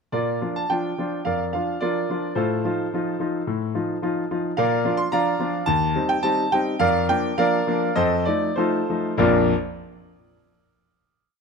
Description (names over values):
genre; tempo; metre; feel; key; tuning
classical-period piano sonatina; 94-111 BPM; 4/4; rubato; Bb major; A4 = 440 Hz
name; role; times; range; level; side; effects
clear concert grand piano; solo; 0.1-9.5 s; Bb1 to C6; -20 LUFS; equal; none
room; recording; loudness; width
light reverb; close, detailed microphones; -20 LUFS; side -5 dB against mid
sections
0.1-9.2 A section; 9.2-11.4 final chord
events
slowing down 3.5-9.2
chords
0.1 Bb; 2.4 F7/A; 4.6 Bb; 5.7 Cm/Eb; 6.8 Bb/F; 8.0 F7; 9.2 Bb